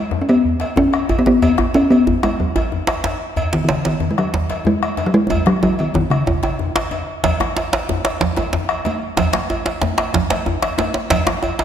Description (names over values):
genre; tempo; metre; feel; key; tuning
west african traditional, West African drum ensemble; 124 BPM (dotted quarters); 12/8; straight; B major pentatonic; A4 = 440 Hz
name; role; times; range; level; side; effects
talking drum; melody; 0.0-6.9 s; B2 to C#4; -16 LUFS; left 1 dB; none
djembe; percussion; 0.1-11.5 s; none; -26 LUFS; left 5 dB; none
cowbell; percussion; 0.3-11.6 s; none; -26 LUFS; equal; none
bombo; percussion; 0.5-11.4 s; none; -24 LUFS; equal; none
djembe; percussion; 0.8-11.6 s; none; -21 LUFS; right 2 dB; none
congas; percussion; 7.2-11.4 s; none; -26 LUFS; right 8 dB; none
room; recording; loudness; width
wet concert hall reverb, RT60 1.8 s; none; -15 LUFS; side -9 dB against mid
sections
0.0-7.2 A section; 7.2-11.6 B section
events
drum fill 5.3-7.2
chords
none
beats
0.45 0.94 | 1.42 1.91 2.39 2.88 | 3.37 3.85 4.34 4.82 | 5.31 5.79 6.28 6.76 | 7.24 7.73 8.21 8.70 | 9.18 9.66 10.15 10.63 | 11.11 11.59